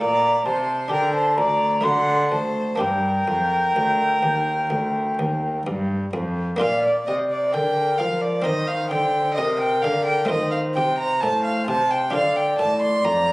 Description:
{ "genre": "classical, baroque-style sonata movement with continuo", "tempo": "65 BPM", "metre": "4/4", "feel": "rubato", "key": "G minor, Bb major from 6.6 s", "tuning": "A4 = 439 Hz", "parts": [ { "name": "baroque flute", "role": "melody", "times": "0.0-13.3 s", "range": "Bb4 to C6", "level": "-22 LUFS", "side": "equal", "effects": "none" }, { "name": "warm violin", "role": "second line", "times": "0.0-13.3 s", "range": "Bb4 to C6", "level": "-23 LUFS", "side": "right 1 dB", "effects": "none" }, { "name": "buff-stop harpsichord", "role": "accompaniment", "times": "0.0-13.3 s", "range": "D2 to G4", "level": "-29 LUFS", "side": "equal", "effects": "none" }, { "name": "rich cello", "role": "bass", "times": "0.0-13.3 s", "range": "D2 to F3", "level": "-26 LUFS", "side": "equal", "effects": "none" } ], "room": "moderate recital hall reverb, RT60 1.5 s", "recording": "recorded on a phone in the room, club reverb, compression", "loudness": "-19 LUFS", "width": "side -20 dB against mid", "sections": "0.0-6.6 A section; 6.6-13.3 A section", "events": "none", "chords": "0.0 Am7b5; 0.9 Gm/D; 1.8 D7; 2.8 Gm; 6.6 Bb; 8.5 Cm; 10.3 F7; 12.1 F6", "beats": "0.00 0.91 1.84 | 2.79 3.75 4.70 5.66 | 6.61 7.54 8.45 9.38 | 10.31 11.23 12.14 13.04" }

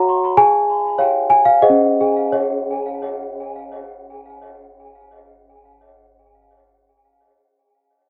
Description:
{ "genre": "classical, lullaby for celesta", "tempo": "84-103 BPM", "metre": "3/4", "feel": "straight", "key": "Db major", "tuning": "A4 = 439 Hz", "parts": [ { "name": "worn celesta", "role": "solo", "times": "0.0-8.1 s", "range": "Db4 to Bb5", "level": "-17 LUFS", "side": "equal", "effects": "tape echo" } ], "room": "moderate studio reverb, RT60 0.6 s", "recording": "dark, warm production", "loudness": "-16 LUFS", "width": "mono", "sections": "0.0-2.3 A section; 2.3-6.5 B section", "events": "slowing down 0.0-2.3", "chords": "0.4 Db/Ab; 1.6 Ab7; 2.3 Db5", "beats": "| 0.37 0.98 1.62 | 2.33 3.03 3.72 | 4.42 5.12 5.82" }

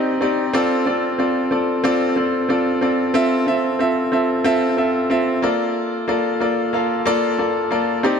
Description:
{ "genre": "pop", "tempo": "92 BPM", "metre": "4/4", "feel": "straight", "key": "unclear", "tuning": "A4 = 440 Hz", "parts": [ { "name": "clear concert grand piano", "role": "solo", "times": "0.0-8.2 s", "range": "Bb3 to G5", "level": "-17 LUFS", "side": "equal", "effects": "ping-pong delay" } ], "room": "moderate plate reverb, RT60 2.8 s", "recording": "none", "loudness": "-17 LUFS", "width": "side -6 dB against mid", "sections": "0.0-8.2 A section", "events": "grand piano fill 0.0-0.5", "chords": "0.0 Cmadd9; 0.5 Dm7; 3.1 Fmaj7/C; 5.4 Bbmaj7", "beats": "| 0.54 1.19 1.84 2.50 | 3.15 3.80 4.45 5.11 | 5.76 6.41 7.06 7.71" }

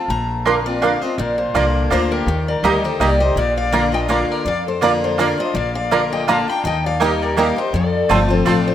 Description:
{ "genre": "bluegrass", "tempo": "165 BPM", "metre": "3/4", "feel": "swing 53% on 8ths", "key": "Bb major", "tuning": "A4 = 444 Hz", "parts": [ { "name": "picked steel-string acoustic guitar", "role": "melody", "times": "0.0-8.7 s", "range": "Bb4 to Bb5", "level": "-23 LUFS", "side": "left 2 dB", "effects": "none" }, { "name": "picked steel-string acoustic guitar", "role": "accompaniment", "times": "0.0-8.7 s", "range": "F2 to G4", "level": "-21 LUFS", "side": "left 2 dB", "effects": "none" }, { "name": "upright bass", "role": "bass", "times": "0.1-8.7 s", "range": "G1 to F2", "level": "-23 LUFS", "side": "equal", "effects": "none" }, { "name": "bluegrass banjo", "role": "melody", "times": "0.5-8.5 s", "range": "Bb3 to G4", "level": "-27 LUFS", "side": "right 1 dB", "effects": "none" }, { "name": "mandolin", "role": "stabs", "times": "0.5-8.6 s", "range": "Bb3 to C6", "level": "-21 LUFS", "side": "right 5 dB", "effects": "none" }, { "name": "dark fiddle", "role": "second line", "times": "0.7-8.7 s", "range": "F4 to G5", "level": "-24 LUFS", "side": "left 4 dB", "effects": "none" } ], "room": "moderate lush hall reverb, RT60 2.5 s", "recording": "rough home demo mix", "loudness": "-15 LUFS", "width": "side -10 dB against mid", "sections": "0.0-1.2 A section; 1.2-8.7 B section", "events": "none", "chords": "0.1 Bbadd9; 2.3 Eb; 3.4 Bb; 6.6 Eb; 7.7 F", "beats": "| 0.09 0.45 0.82 | 1.18 1.54 1.91 | 2.27 2.64 3.00 | 3.37 3.73 4.09 | 4.46 4.82 5.18 | 5.55 5.91 6.28 | 6.64 7.00 7.37 | 7.73 8.09 8.46" }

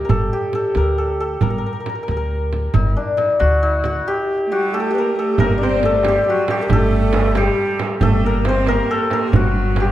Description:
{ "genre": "Persian modal ensemble", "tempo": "91 BPM (dotted quarters)", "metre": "6/8", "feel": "straight", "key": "G avaz esfahan", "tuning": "A4 = 441 Hz", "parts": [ { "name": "santur", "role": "melody", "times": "0.0-9.9 s", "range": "D4 to D5", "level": "-19 LUFS", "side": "left 1 dB", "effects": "none" }, { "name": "upright bass", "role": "bass", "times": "0.0-9.9 s", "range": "G1 to D2", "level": "-20 LUFS", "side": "equal", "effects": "none" }, { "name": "frame drum", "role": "percussion", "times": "0.1-9.9 s", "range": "none", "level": "-23 LUFS", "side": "right 3 dB", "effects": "none" }, { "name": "breathy mellow low ney", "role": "second line", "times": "4.5-9.9 s", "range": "F#4 to C5", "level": "-25 LUFS", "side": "left 1 dB", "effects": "none" }, { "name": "clear cello", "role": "second line", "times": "4.5-9.9 s", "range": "F#3 to C4", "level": "-24 LUFS", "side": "right 5 dB", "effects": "none" }, { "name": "tombak", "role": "percussion", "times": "5.4-9.9 s", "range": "none", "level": "-25 LUFS", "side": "right 3 dB", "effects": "none" } ], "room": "moderate recital hall reverb, RT60 1.5 s", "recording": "dark, warm production", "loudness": "-15 LUFS", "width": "side -13 dB against mid", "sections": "0.0-5.4 A section; 5.4-9.9 B section", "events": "break 4.1-5.4", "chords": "none", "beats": "| 0.10 0.76 | 1.42 2.08 | 2.74 3.40 | 4.06 4.72 | 5.38 6.04 | 6.70 7.36 | 8.02 8.67 | 9.33" }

